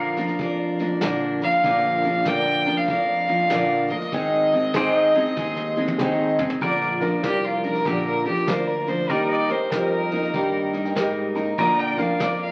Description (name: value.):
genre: honky-tonk and classic country.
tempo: 96 BPM.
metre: 4/4.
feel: swing 64% on 8ths.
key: Bb mixolydian.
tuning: A4 = 440 Hz.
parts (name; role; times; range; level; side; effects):
clear fiddle; second line; 0.0-12.5 s; F4 to Bb5; -26 LUFS; equal; none.
picked steel-string acoustic guitar; accompaniment; 0.0-12.5 s; Ab2 to Bb4; -26 LUFS; equal; none.
pedal steel guitar; sustained chords; 0.0-12.5 s; Bb4 to F5; -32 LUFS; equal; none.
soft brush drum kit; drums; 0.2-12.4 s; hi-hat, kick drum, snare drum, toms; -34 LUFS; equal; none.
warm tuba; bass; 0.4-12.5 s; Ab1 to Bb2; -33 LUFS; equal; none.
warm concert grand piano; accompaniment; 2.3-12.5 s; F4 to Bb5; -31 LUFS; equal; none.
room: wet large studio reverb, RT60 1.0 s.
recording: very old 78 rpm record, vinyl crackle.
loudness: -22 LUFS.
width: mono.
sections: 0.0-6.6 A section; 6.6-12.5 B section.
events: fiddle solo 0.0-6.6, 6.6-12.5; drum fill 5.4-6.6; grand piano fill 10.3-11.6.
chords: 0.0 Bb; 4.1 Ab; 6.6 Bb; 9.1 Eb; 11.6 Bb.